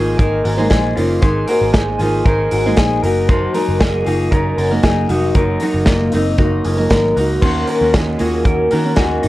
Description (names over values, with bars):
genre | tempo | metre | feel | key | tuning
jangly indie pop | 116 BPM | 4/4 | straight | unclear | A4 = 440 Hz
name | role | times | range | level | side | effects
picked steel-string acoustic guitar | accompaniment | 0.0-9.3 s | Eb3 to C5 | -18 LUFS | right 2 dB | none
electric guitar through a small old amp | arpeggios | 0.0-9.3 s | Bb3 to C5 | -19 LUFS | left 2 dB | phaser, digital delay
vintage muted picked electric bass | bass | 0.0-9.3 s | F1 to Eb3 | -20 LUFS | equal | none
modern studio drum kit | drums | 0.2-9.3 s | crash cymbal, hi-hat, kick drum, snare drum | -18 LUFS | equal | none
room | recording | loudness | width
light reverb | worn, warbling old tape, cassette tape, warbly pitch drift | -13 LUFS | side -16 dB against mid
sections
0.0-7.4 A section; 7.4-9.3 B section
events
none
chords
0.0 Abadd9; 3.0 Ebm; 7.4 Ebm7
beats
0.20 0.71 | 1.23 1.75 2.26 2.78 | 3.29 3.81 4.32 4.84 | 5.36 5.87 6.39 6.90 | 7.42 7.93 8.45 8.97